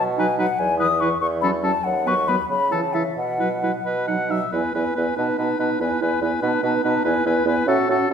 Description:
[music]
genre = quick classical-period movement for wind quintet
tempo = 88-98 BPM (dotted quarters)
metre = 6/8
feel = rubato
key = E major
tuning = A4 = 440 Hz
[part]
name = concert flute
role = melody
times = 0.0-8.1 s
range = E5 to D#6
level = -24 LUFS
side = left 5 dB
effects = none
[part]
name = warm bassoon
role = bass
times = 0.0-8.1 s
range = D#2 to C#3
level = -25 LUFS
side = right 3 dB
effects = none
[part]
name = clear oboe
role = second line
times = 0.2-8.1 s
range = A4 to F#5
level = -26 LUFS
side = left 2 dB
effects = none
[part]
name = mellow clarinet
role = accompaniment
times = 0.2-8.1 s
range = B3 to F#4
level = -26 LUFS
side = right 7 dB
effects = none
[part]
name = warm French horn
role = accompaniment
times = 0.2-8.1 s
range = E3 to C#4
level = -28 LUFS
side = equal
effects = none
[sound]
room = moderate recital hall reverb, RT60 1.8 s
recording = minimal, uncompressed stereo recording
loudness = -19 LUFS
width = side -7 dB against mid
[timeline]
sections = 0.0-4.5 A section; 4.5-8.1 B section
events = none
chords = 0.0 B; 0.6 E5; 1.2 F#m7/E; 1.9 B/D#; 2.5 A/C#; 3.2 Bsus4; 3.9 B; 4.5 E; 5.2 B7; 5.8 E; 6.4 B7; 7.1 E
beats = | 0.60 1.22 | 1.85 2.50 | 3.18 3.86 | 4.53 5.18 | 5.81 6.44 | 7.06 7.68

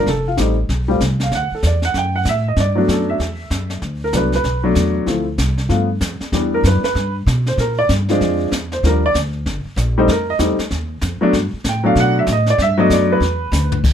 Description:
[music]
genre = jazz piano trio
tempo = 192 BPM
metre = 4/4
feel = swing 62% on 8ths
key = G major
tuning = A4 = 440 Hz
[part]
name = warm upright piano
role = melody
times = 0.0-13.8 s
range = E3 to G5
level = -17 LUFS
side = equal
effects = none
[part]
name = upright bass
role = bass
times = 0.0-13.9 s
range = F1 to B2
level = -19 LUFS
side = equal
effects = none
[part]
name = jazz brush drum kit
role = drums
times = 0.1-13.9 s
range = brushed snare drum, crash cymbal, hi-hat, kick drum, snare drum, toms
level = -23 LUFS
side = left 1 dB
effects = none
[sound]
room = light reverb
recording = close, detailed microphones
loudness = -15 LUFS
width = side -9 dB against mid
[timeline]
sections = 0.0-3.8 A section; 3.8-13.8 B section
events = upright piano solo 3.8-13.8; drum fill 13.2-13.8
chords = 0.1 Fadd9; 1.3 Gmaj7(no3); 3.8 Bm7; 5.1 Dm7; 5.7 G7; 6.3 Em9; 7.6 Bb7; 8.8 Ebmaj7; 10.1 F7; 11.3 Gmaj7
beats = | 0.06 0.38 0.69 1.00 | 1.31 1.63 1.94 2.25 | 2.57 2.88 3.19 3.51 | 3.82 4.13 4.45 4.76 | 5.08 5.39 5.70 6.01 | 6.33 6.64 6.95 7.27 | 7.58 7.89 8.21 8.52 | 8.83 9.15 9.46 9.77 | 10.09 10.40 10.71 11.02 | 11.34 11.65 11.96 12.28 | 12.59 12.90 13.22 13.53 | 13.85

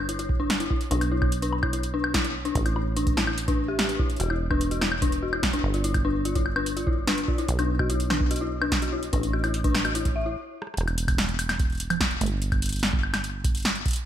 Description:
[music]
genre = IDM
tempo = 146 BPM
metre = 4/4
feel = straight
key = unclear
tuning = A4 = 440 Hz
[part]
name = deep acid bass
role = bass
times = 0.0-13.8 s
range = E1 to B1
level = -29 LUFS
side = right 1 dB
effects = none
[part]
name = dark detuned synth bell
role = arpeggios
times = 0.1-10.3 s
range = D4 to E5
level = -28 LUFS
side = left 3 dB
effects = chorus, ping-pong delay
[part]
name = electro analog drum machine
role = drums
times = 0.1-14.0 s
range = congas, hi-hat, rim click, snare drum, woodblock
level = -28 LUFS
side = equal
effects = ping-pong delay
[part]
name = electronic kick drum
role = drums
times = 0.3-13.9 s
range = none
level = -27 LUFS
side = right 1 dB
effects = none
[sound]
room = light reverb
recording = bright 1980s-style digital production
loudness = -23 LUFS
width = side -10 dB against mid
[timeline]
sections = 0.0-10.8 A section; 10.8-14.1 B section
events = stop 10.4-10.8; drum fill 10.6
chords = 0.0 G5; 0.9 N.C.; 2.6 A5; 4.2 N.C.; 5.6 G5; 7.5 N.C.; 9.1 A5; 10.8 N.C.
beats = 0.09 0.50 | 0.91 1.32 1.73 2.14 | 2.55 2.96 3.38 3.79 | 4.20 4.61 5.02 5.43 | 5.84 6.25 6.66 7.08 | 7.49 7.90 8.31 8.72 | 9.13 9.54 9.95 10.36 | 10.77 11.18 11.60 12.01 | 12.42 12.83 13.24 13.65

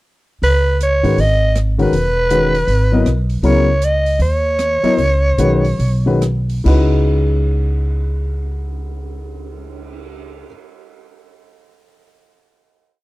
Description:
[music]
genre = modal jazz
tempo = 136-159 BPM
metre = 4/4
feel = swing 63% on 8ths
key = C# minor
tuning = A4 = 440 Hz
[part]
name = growling soprano saxophone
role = melody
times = 0.4-6.2 s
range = B4 to D#5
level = -17 LUFS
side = right 1 dB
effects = none
[part]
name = upright bass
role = bass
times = 0.4-10.4 s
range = E1 to G#2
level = -16 LUFS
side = equal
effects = none
[part]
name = open jazz drum kit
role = drums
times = 0.4-10.1 s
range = crash cymbal, cymbal swell, hi-hat, kick drum, rim click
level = -32 LUFS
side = right 1 dB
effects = none
[part]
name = warm upright piano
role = accompaniment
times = 1.0-10.5 s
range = C#3 to D#5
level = -18 LUFS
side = left 3 dB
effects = none
[sound]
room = small room reverb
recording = dry, close 1970s-style studio recording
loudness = -13 LUFS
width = side -19 dB against mid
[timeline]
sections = 0.4-6.7 A section; 6.7-10.2 final chord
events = slowing down 3.4-6.7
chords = 0.4 C#m11; 3.4 Badd9/C#; 6.7 C#m11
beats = | 0.43 0.80 1.18 1.56 | 1.94 2.31 2.69 3.07 | 3.44 3.82 4.20 4.59 | 4.98 5.38 5.79 6.21 | 6.65 7.09 7.53 7.97 | 8.42 8.86 9.30 9.74

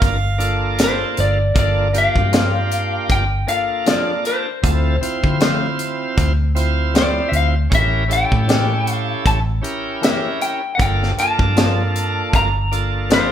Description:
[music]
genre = straight-eighth soul blues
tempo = 78 BPM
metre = 4/4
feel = swing 56% on 16ths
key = unclear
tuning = A4 = 440 Hz
[part]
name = clear harmonica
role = second line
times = 0.0-0.6 s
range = F5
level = -26 LUFS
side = right 5 dB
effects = overdrive
[part]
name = bright tonewheel organ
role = accompaniment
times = 0.0-13.3 s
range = Bb3 to C5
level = -23 LUFS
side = right 3 dB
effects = overdrive, slow rotary speaker
[part]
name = vintage muted fingered electric bass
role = bass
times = 0.0-13.3 s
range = G1 to D3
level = -20 LUFS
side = equal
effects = none
[part]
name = tight funk drum kit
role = drums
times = 0.0-13.3 s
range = hi-hat, kick drum, snare drum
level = -19 LUFS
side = equal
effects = none
[part]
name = lightly driven lead guitar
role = melody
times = 0.8-13.3 s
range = C5 to Bb5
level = -21 LUFS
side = left 2 dB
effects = none
[part]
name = electric guitar with an envelope filter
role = stabs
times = 2.3-13.3 s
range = E3 to G4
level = -25 LUFS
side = left 4 dB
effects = none
[sound]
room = moderate large studio reverb, RT60 1.1 s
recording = band playing live in one room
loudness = -15 LUFS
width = side -10 dB against mid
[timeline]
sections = 0.0-13.3 A section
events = none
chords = 0.0 Gm7; 4.6 Dm7; 7.7 A7b9; 10.8 Gm7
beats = 0.01 0.78 | 1.55 2.33 3.10 3.87 | 4.63 5.41 6.17 6.95 | 7.71 8.48 9.25 10.02 | 10.79 11.56 12.33 13.10

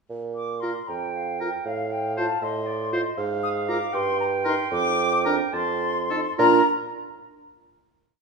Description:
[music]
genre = quick classical-period movement for wind quintet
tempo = 68-80 BPM (dotted quarters)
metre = 6/8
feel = rubato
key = Bb major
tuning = A4 = 440 Hz
[part]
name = warm bassoon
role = bass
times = 0.1-6.6 s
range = F2 to Bb2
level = -27 LUFS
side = right 5 dB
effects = none
[part]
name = mellow silver concert flute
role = melody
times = 0.4-6.7 s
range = F5 to Eb6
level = -27 LUFS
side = left 5 dB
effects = none
[part]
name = clear oboe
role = second line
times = 0.6-6.6 s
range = A4 to C5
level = -31 LUFS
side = left 3 dB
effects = none
[part]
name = mellow French horn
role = accompaniment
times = 0.6-6.6 s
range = D4 to F4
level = -30 LUFS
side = right 5 dB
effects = none
[part]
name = warm clarinet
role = accompaniment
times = 0.9-6.6 s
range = F4 to A5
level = -29 LUFS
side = right 6 dB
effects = none
[sound]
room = wet recital hall reverb, RT60 1.6 s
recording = studio ambience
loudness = -22 LUFS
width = side -4 dB against mid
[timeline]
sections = 0.1-6.4 A section; 6.4-8.0 final chord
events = none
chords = 0.1 Bb5; 1.7 F/A; 3.2 N.C.; 4.7 Bb/F (rootless); 5.5 F; 6.4 Bb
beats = | 0.10 0.89 | 1.66 2.43 | 3.18 3.94 | 4.72 5.54 | 6.39

